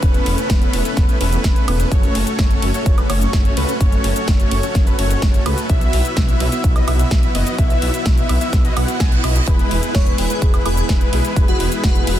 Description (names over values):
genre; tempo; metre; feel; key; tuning
EDM, festival progressive house; 127 BPM; 4/4; straight; E major; A4 = 442 Hz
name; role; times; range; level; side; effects
warm symphonic string section; sustained chords; 0.0-12.2 s; E3 to B4; -28 LUFS; left 3 dB; sidechain pumping
wide unison lead; arpeggios; 0.0-12.2 s; B4 to G#5; -26 LUFS; equal; wide subtle chorus, sidechain pumping, dub echo
dense compressed supersaw; riff; 0.0-12.2 s; G#3 to G#5; -24 LUFS; right 1 dB; sidechain pumping, dub echo
detuned saw bass; bass; 0.0-12.2 s; E1 to C#2; -20 LUFS; equal; sidechain pumping
big-room dance drum kit; drums; 0.0-12.2 s; cabasa, hi-hat, ride cymbal, snare drum, woodblock; -25 LUFS; equal; none
electronic kick drum; drums; 0.0-11.9 s; none; -15 LUFS; equal; none
reverse cymbal; sound effects; 8.7-9.5 s; none; -29 LUFS; right 5 dB; none
airy dreamy lead; melody; 9.9-12.2 s; F#4 to C#5; -26 LUFS; equal; chorus, dub echo
room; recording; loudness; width
digital ambience; dense, heavily limited modern master; -14 LUFS; side -12 dB against mid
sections
0.0-12.2 A section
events
reverse cymbal 8.7-9.5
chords
0.0 Aadd9/E; 1.9 F#m; 5.7 Bsus4; 9.5 E